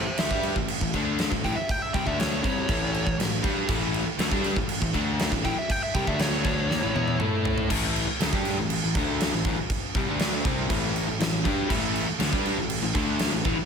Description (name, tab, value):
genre	hard rock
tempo	120 BPM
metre	4/4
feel	straight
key	unclear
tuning	A4 = 438 Hz
part	dark smooth lead guitar	melody	0.0-7.2 s	G4 to G5	-31 LUFS	equal	overdrive, analog delay
part	distorted electric guitar	riff	0.0-7.7, 11.7-13.6 s	A2 to A4	-34 LUFS	equal	distortion
part	overdriven semi-hollow guitar	riff	0.0-13.6 s	A2 to A4	-30 LUFS	left 10 dB	none
part	sludgy distorted guitar	riff	0.0-13.6 s	A2 to A4	-32 LUFS	right 10 dB	overdrive, slapback echo
part	fuzz picked electric bass	bass	0.0-13.6 s	A1 to A2	-32 LUFS	right 1 dB	overdrive
part	huge arena drum kit	drums	0.2-13.6 s	crash cymbal, kick drum, snare drum, toms	-27 LUFS	right 1 dB	none
room	moderate concert hall reverb, RT60 2.0 s, studio reverb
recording	big arena sound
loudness	-23 LUFS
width	side -6 dB against mid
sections	0.0-7.7 A section; 7.7-13.7 B section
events	lead electric guitar solo 0.0-7.7; drum fill 6.7-7.7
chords	0.0 A5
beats	0.18 0.69 1.19 | 1.69 2.19 2.69 3.19 | 3.69 4.20 4.70 5.20 | 5.70 6.20 6.70 7.20 | 7.70 8.20 8.70 9.20 | 9.70 10.20 10.70 11.20 | 11.70 12.20 12.70 13.20